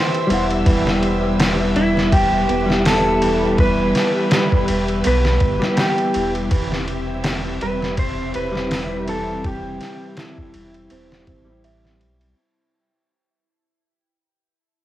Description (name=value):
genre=trip hop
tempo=82 BPM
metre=4/4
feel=swing 56% on 16ths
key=unclear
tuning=A4 = 439 Hz
part: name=electric slide guitar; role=melody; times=0.0-12.0 s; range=E4 to C5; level=-23 LUFS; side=equal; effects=dub echo
part: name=string machine, cellos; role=sustained chords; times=0.0-12.3 s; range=C4 to E6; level=-27 LUFS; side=left 1 dB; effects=ensemble chorus, cassette tape
part: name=nylon-string guitar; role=arpeggios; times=0.0-12.0 s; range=E3 to E5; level=-28 LUFS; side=right 5 dB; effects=cassette tape, tape echo
part: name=trip hop sampler-style drum kit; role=drums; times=0.1-12.4 s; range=hi-hat, kick drum, ride cymbal, snare drum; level=-21 LUFS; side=equal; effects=cassette tape
part: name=mellow electric guitar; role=accompaniment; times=0.3-12.4 s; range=G3 to F#5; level=-22 LUFS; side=left 1 dB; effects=harmonic tremolo, cassette tape, tape echo
part: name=warm sub bass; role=bass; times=0.3-12.3 s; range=E1 to B1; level=-25 LUFS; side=equal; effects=tube saturation
room=light reverb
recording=home recording on cassette, vinyl crackle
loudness=-16 LUFS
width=side -14 dB against mid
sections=0.0-12.4 A section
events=fade-out 4.6-12.4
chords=0.0 C/E